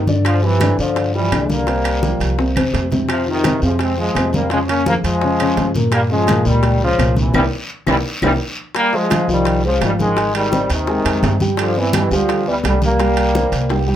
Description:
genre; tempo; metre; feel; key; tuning
latin, salsa; 170 BPM; 4/4; straight; F minor; A4 = 440 Hz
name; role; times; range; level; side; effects
bright trombone section; melody; 0.0-13.8 s; B2 to Db4; -18 LUFS; left 1 dB; none
upright bass; bass; 0.0-14.0 s; Ab1 to G2; -20 LUFS; right 1 dB; none
dark grand piano; accompaniment; 0.1-14.0 s; Bb2 to Ab5; -20 LUFS; left 1 dB; none
bongos; percussion; 0.1-14.0 s; none; -28 LUFS; left 4 dB; none
congas; percussion; 0.1-14.0 s; none; -25 LUFS; equal; none
guiro; percussion; 0.1-14.0 s; none; -32 LUFS; left 1 dB; none
claves; percussion; 0.3-8.3 s; none; -28 LUFS; left 3 dB; none
timbales; percussion; 0.3-13.8 s; none; -26 LUFS; right 5 dB; none
room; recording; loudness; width
moderate small room reverb, RT60 0.5 s; none; -14 LUFS; side -11 dB against mid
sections
0.0-8.8 A section; 8.8-14.0 A section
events
drum fill 2.6-3.1, 7.3-8.8, 13.7; band accent 7.3-8.8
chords
0.3 G5; 1.7 C7sus4; 2.4 C; 3.1 Fm7; 4.5 Bbm7/F; 5.9 Gm7b5; 7.3 C7; 8.8 Fm9; 10.2 Abmaj7; 11.6 G7; 13.0 C5

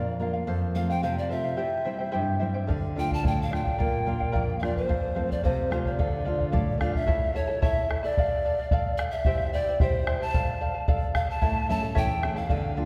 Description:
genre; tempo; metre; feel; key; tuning
andean folk, Andean ensemble; 110 BPM; 2/4; straight; D minor; A4 = 440 Hz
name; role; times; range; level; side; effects
mellow polished pan flute; melody; 0.0-12.9 s; C5 to A5; -32 LUFS; equal; none
charango; accompaniment; 0.0-12.9 s; E4 to A5; -35 LUFS; equal; none
nylon-string guitar; accompaniment; 0.0-7.1, 11.4-12.9 s; E2 to F5; -32 LUFS; equal; none
bombo; percussion; 2.7-12.6 s; none; -30 LUFS; equal; none
room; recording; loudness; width
wet concert hall reverb, RT60 2.3 s; heard from further back in the room; -27 LUFS; mono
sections
0.0-7.1 A section; 7.1-12.9 B section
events
nylon-string guitar fill 6.3-7.1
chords
0.5 F; 1.6 C; 2.7 Dm; 3.8 Bb; 4.9 F; 6.0 Dm; 7.1 A; 8.2 Dm; 9.3 C; 10.3 Dm; 11.4 A

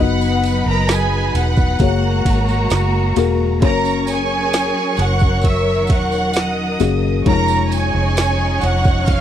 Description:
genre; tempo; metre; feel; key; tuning
pop ballad; 66 BPM; 4/4; straight; unclear; A4 = 440 Hz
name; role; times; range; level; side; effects
clear symphonic violin section; melody; 0.0-9.2 s; G#4 to F#6; -21 LUFS; right 1 dB; none
warm studio violin section; second line; 0.0-9.2 s; A#4 to D#6; -26 LUFS; right 3 dB; none
felt-muted upright piano; accompaniment; 0.0-9.2 s; E#3 to D#5; -22 LUFS; left 11 dB; none
warm studio string section; sustained chords; 0.0-9.2 s; D#3 to A#4; -23 LUFS; equal; none
vintage muted fingered electric bass; bass; 0.0-9.2 s; E1 to G#1; -19 LUFS; right 1 dB; none
tambourine; percussion; 0.2-9.2 s; none; -34 LUFS; right 18 dB; none
smooth R&B drum kit; drums; 0.4-9.2 s; kick drum, ride cymbal, snare drum; -17 LUFS; right 1 dB; none
room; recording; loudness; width
little or no reverb; dry, close 1970s-style studio recording; -14 LUFS; side -10 dB against mid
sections
0.0-9.2 A section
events
none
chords
0.0 B/F#; 1.8 F#add9; 3.6 F#; 7.3 C#add9/E#

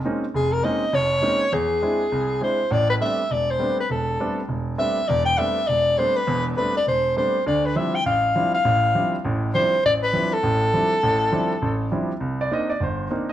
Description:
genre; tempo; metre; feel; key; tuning
jazz; 202 BPM; 4/4; swing 61% on 8ths; A minor; A4 = 441 Hz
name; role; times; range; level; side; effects
warm baby grand piano; accompaniment; 0.0-13.3 s; E1 to Eb5; -24 LUFS; right 1 dB; none
breathy soprano saxophone; melody; 0.4-11.9 s; G#4 to G5; -20 LUFS; left 1 dB; none
room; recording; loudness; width
moderate large studio reverb, RT60 0.9 s; none; -19 LUFS; side -12 dB against mid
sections
0.0-2.7 A section; 2.7-12.2 B section; 12.2-13.3 C section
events
none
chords
0.0 Bbm11; 1.5 Eaug7; 2.7 Am11; 7.5 Dm11; 12.2 Cm9

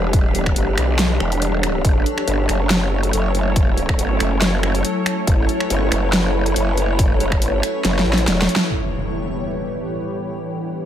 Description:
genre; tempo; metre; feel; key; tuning
heavy wobble dubstep; 140 BPM; 4/4; swing 54% on 16ths, half-time; E dorian; A4 = 440 Hz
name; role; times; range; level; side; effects
lush unison pad; sustained chords; 0.0-10.9 s; E3 to C#5; -25 LUFS; equal; chorus, phaser, sidechain pumping
growl bass; bass; 0.0-8.5 s; E1 to B1; -20 LUFS; equal; chorus, overdrive
granular cloud pad; texture; 0.0-10.9 s; E3 to C#5; -25 LUFS; equal; built-in reverb, sidechain pumping
dubstep drum kit; drums; 0.1-8.7 s; finger snaps, hi-hat, snare drum; -21 LUFS; equal; studio reverb
electronic kick drum; drums; 0.1-7.4 s; none; -18 LUFS; equal; studio reverb
impact; sound effects; 8.7-10.4 s; none; -28 LUFS; equal; none
room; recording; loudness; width
digital ambience; none; -16 LUFS; side -10 dB against mid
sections
0.0-8.7 A section; 8.7-10.9 B section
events
drop 0.0-8.7; drum fill 7.8-8.7; band accent 8.6; impact 8.7-10.4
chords
0.0 Em; 1.8 F#m; 8.7 Em

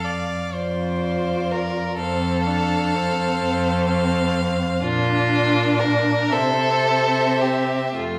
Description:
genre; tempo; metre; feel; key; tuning
classical, slow romantic movement for string quartet; 34-42 BPM (dotted quarters); 6/8; rubato; F major; A4 = 440 Hz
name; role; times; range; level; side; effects
rich violin; melody; 0.0-7.9 s; D5 to F5; -31 LUFS; equal; none
warm violin; second line; 0.0-8.2 s; F4 to D5; -26 LUFS; equal; none
rich cello; bass; 0.0-8.2 s; F2 to C3; -26 LUFS; equal; none
warm viola; accompaniment; 0.5-8.2 s; A3 to F4; -26 LUFS; equal; none
room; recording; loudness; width
wet recital hall reverb, RT60 1.3 s; recorded in a church or concert hall; -21 LUFS; mono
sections
0.0-8.2 A section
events
none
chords
0.0 N.C.; 2.0 F; 4.8 Bb; 6.3 C

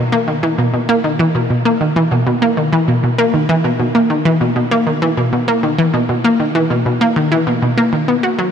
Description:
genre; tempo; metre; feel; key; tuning
ambient; 98 BPM; 4/4; straight; B major; A4 = 439 Hz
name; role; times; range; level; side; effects
analog pluck; solo; 0.0-8.5 s; B2 to F#4; -12 LUFS; equal; chorus, tape echo
room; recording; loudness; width
moderate huge ambient reverb, RT60 8.1 s; cassette tape; -12 LUFS; side -7 dB against mid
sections
0.0-8.5 A section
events
none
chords
none

